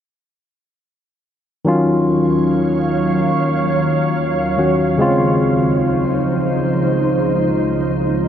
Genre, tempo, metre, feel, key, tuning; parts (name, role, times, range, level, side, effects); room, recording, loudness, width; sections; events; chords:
R&B; 72 BPM; 4/4; straight; Eb dorian; A4 = 439 Hz
barky tine electric piano; accompaniment; 1.6-8.3 s; Db3 to Gb4; -16 LUFS; left 1 dB
glassy FM pad; sustained chords; 2.2-8.3 s; Db2 to F5; -18 LUFS; right 1 dB; ensemble chorus, built-in reverb
wet huge ambient reverb, RT60 7.3 s; dreamy mix soaked in reverb; -14 LUFS; side -9 dB against mid
1.7-8.3 A section
1.7 Ebm9; 5.0 Dbmaj7